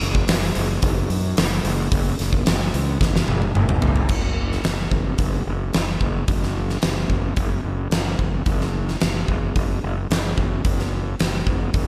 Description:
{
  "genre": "hard rock",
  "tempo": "110 BPM",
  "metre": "4/4",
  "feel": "straight",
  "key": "unclear",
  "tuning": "A4 = 440 Hz",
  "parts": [
    { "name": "fuzz fingered electric bass", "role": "bass", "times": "0.0-11.9 s", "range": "F#1 to F#2", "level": "-26 LUFS", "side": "equal", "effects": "overdrive" },
    { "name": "huge arena drum kit", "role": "drums", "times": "0.0-11.9 s", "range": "crash cymbal, hi-hat, kick drum, snare drum, toms", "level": "-24 LUFS", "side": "equal", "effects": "none" }
  ],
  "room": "light reverb",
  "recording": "none",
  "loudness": "-22 LUFS",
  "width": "mono",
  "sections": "0.0-4.1 A section; 4.1-11.9 B section",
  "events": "drum fill 3.0-4.1",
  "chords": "none"
}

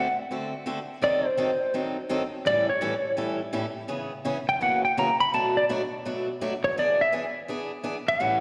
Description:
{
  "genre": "country",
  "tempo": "167 BPM",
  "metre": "4/4",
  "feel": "swing 65% on 8ths",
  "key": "unclear",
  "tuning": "A4 = 440 Hz",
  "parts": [
    { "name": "clean lap steel guitar", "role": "melody", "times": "0.0-8.4 s", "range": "B#4 to B5", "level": "-27 LUFS", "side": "equal", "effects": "slapback echo" },
    { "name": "picked swing-style acoustic guitar", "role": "accompaniment", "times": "0.0-8.4 s", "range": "F#2 to A4", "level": "-32 LUFS", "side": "equal", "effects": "slapback echo" }
  ],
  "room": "moderate lush hall reverb, RT60 3.0 s",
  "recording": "live gig heard through the venue's PA, recital hall reverb",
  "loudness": "-26 LUFS",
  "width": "mono",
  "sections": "0.0-8.4 A section",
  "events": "electric slide guitar solo 0.0-8.4",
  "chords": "0.0 D7; 1.0 D#dim7; 2.5 A7; 3.9 C#m7; 4.6 F#7; 5.3 Bm7; 6.8 E7"
}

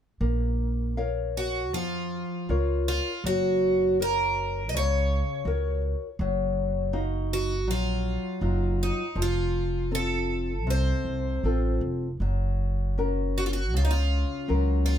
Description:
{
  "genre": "fado-style ballad",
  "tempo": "80 BPM",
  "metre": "4/4",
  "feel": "rubato",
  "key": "Bb harmonic minor",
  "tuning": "A4 = 442 Hz",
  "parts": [
    { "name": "nylon-string guitar", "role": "accompaniment", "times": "0.2-15.0 s", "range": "C3 to F5", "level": "-30 LUFS", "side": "left 4 dB", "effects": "none" },
    { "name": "upright bass", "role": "bass", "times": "0.2-15.0 s", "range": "F1 to F2", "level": "-27 LUFS", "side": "equal", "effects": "none" },
    { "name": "picked twelve-string acoustic guitar", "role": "melody", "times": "1.4-15.0 s", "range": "Eb4 to Eb5", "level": "-29 LUFS", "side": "right 3 dB", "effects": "plate reverb" }
  ],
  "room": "light reverb",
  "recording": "close, detailed microphones",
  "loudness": "-24 LUFS",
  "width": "side -9 dB against mid",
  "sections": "0.2-15.0 A section",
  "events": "none",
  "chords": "0.2 Bbm; 3.2 Gb; 6.2 Ebmadd9/Gb; 9.2 F; 12.2 Gb"
}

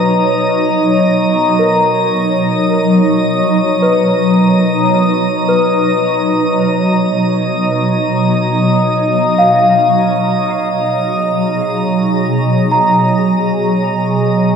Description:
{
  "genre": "ambient",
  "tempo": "54 BPM",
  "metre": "4/4",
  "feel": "straight",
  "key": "B major",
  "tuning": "A4 = 439 Hz",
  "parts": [
    { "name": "shimmering ambient pad", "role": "sustained chords", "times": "0.0-14.6 s", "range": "B2 to A#5", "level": "-13 LUFS", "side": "equal", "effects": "chorus, built-in reverb, phaser, shimmer reverb" },
    { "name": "celesta", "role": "arpeggios", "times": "0.0-14.6 s", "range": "A#4 to A#5", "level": "-17 LUFS", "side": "left 1 dB", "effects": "tape echo, shimmer reverb" },
    { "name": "drifting glass-harmonics texture", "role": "texture", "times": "0.0-14.6 s", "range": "D#5 to D#6", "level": "-18 LUFS", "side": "right 2 dB", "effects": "chorus, built-in reverb, shimmer reverb" }
  ],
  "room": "wet lush hall reverb, RT60 3.1 s",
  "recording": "dark, warm production",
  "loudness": "-11 LUFS",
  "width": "side -6 dB against mid",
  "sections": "0.0-14.6 A section",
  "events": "none",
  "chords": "0.0 Bmaj7; 9.4 F#add9/B"
}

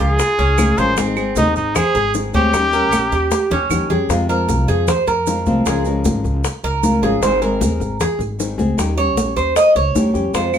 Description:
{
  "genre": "latin, Cuban son and guajira",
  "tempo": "154 BPM",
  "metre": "4/4",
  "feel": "straight",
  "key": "unclear",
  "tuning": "A4 = 439 Hz",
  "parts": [
    { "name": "clear trumpet", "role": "melody", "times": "0.0-3.7 s", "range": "Eb4 to C5", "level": "-18 LUFS", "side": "equal", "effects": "none" },
    { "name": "nylon-string guitar", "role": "accompaniment", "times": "0.0-10.6 s", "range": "C3 to Bb4", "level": "-22 LUFS", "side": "left 3 dB", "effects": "none" },
    { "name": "Cuban tres", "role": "arpeggios", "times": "0.0-10.5 s", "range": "C4 to Eb5", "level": "-19 LUFS", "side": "right 3 dB", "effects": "none" },
    { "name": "upright bass", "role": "bass", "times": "0.0-10.6 s", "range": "Ab1 to F2", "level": "-21 LUFS", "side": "equal", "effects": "none" },
    { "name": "bongos", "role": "percussion", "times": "0.0-10.5 s", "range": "none", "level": "-26 LUFS", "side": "left 6 dB", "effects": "none" },
    { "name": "maracas", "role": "percussion", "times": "0.0-10.6 s", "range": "none", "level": "-31 LUFS", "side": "right 6 dB", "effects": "none" },
    { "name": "congas", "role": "percussion", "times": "0.2-10.6 s", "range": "none", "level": "-22 LUFS", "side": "left 1 dB", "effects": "none" },
    { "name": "claves", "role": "percussion", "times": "0.6-3.9, 10.5-10.6 s", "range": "none", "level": "-27 LUFS", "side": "right 8 dB", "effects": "none" }
  ],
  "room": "wet studio reverb, RT60 0.5 s",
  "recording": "minimal, uncompressed stereo recording",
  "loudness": "-14 LUFS",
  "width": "side -8 dB against mid",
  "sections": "0.0-4.1 A section; 4.1-10.6 B section",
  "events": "drum fill 3.3-4.1; Cuban tres solo 4.1-10.6",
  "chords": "0.0 Db6; 1.0 Ab; 2.5 Eb7; 4.1 Fm; 5.7 Db6; 7.2 Abadd9; 8.8 Eb7"
}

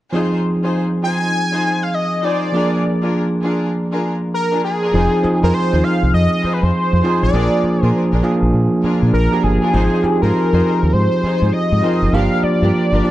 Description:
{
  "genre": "R&B",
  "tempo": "100 BPM",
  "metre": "4/4",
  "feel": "swing 63% on 16ths",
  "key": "F dorian",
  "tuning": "A4 = 439 Hz",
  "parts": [
    { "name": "bell-like tine electric piano", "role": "accompaniment", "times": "0.1-13.1 s", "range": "F3 to Bb4", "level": "-17 LUFS", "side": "right 1 dB", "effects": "none" },
    { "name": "warm studio string section", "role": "stabs", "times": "0.1-13.1 s", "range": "D4 to C5", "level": "-25 LUFS", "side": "left 2 dB", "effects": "none" },
    { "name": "octave-doubled lead", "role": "melody", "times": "1.0-13.1 s", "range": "Ab4 to Ab5", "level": "-20 LUFS", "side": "left 1 dB", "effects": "chorus, phaser" },
    { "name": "deep dub fingered electric bass", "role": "bass", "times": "4.9-13.0 s", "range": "F1 to Bb2", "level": "-16 LUFS", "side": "equal", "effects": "none" }
  ],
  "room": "light reverb",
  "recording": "dark, warm production",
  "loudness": "-14 LUFS",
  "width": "side -14 dB against mid",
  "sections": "0.1-4.9 A section; 4.9-13.1 B section",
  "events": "none",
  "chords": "0.1 Fm7; 2.5 Bb7; 4.9 Fm7; 7.3 Bb7; 9.7 Ab6; 12.1 Gm7"
}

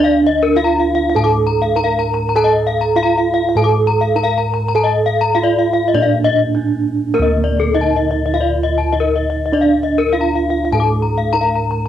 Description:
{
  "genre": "Balinese gamelan",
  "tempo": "100 BPM",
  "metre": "4/4",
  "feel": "straight",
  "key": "D pelog",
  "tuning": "A4 = 440 Hz",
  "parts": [
    { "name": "gamelan-type bronze metallophone", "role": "melody", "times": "0.0-11.9 s", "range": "Bb3-20c to Bb4-20c", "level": "-19 LUFS", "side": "right 7 dB", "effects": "cassette tape" },
    { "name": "gamelan-type bronze metallophone", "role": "arpeggios", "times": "0.0-11.9 s", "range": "A4-30c to D6", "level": "-16 LUFS", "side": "left 6 dB", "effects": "cassette tape" },
    { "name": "gamelan-type bossed gongs", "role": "bass", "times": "0.0-11.9 s", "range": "D2 to Bb4-20c", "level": "-18 LUFS", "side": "right 1 dB", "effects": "none" }
  ],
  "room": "light reverb, studio ambience",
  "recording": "home recording on cassette",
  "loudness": "-13 LUFS",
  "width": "side -10 dB against mid",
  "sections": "0.0-11.9 A section",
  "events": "none",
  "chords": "none"
}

